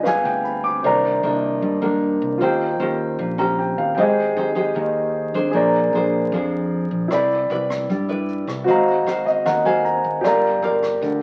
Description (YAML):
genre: bossa nova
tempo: 153 BPM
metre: 4/4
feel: straight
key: C minor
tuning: A4 = 439 Hz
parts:
  - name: nylon-string guitar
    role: accompaniment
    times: 0.0-11.2 s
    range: G2 to F5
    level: -24 LUFS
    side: equal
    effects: none
  - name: warm grand piano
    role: accompaniment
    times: 0.0-11.2 s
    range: E4 to D6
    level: -23 LUFS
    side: equal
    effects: none
  - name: fingered electric bass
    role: bass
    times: 0.0-11.2 s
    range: G1 to G2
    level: -30 LUFS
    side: equal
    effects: none
  - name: jazz brush drum kit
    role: drums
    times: 0.1-0.7, 7.1-11.1 s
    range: hi-hat, kick drum, rim click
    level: -38 LUFS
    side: equal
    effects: none
room: moderate studio reverb, RT60 0.7 s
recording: very old 78 rpm record, vinyl crackle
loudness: -20 LUFS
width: mono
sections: 0.8-11.2 A section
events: grand piano fill 0.0-0.8, 3.2-4.0, 9.1-10.2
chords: 0.1 G7b9; 0.8 Cm9; 2.4 Eb13; 4.0 Abmaj7; 5.5 Bb9; 7.1 Cmaj9; 8.7 Ab13; 10.2 Gm7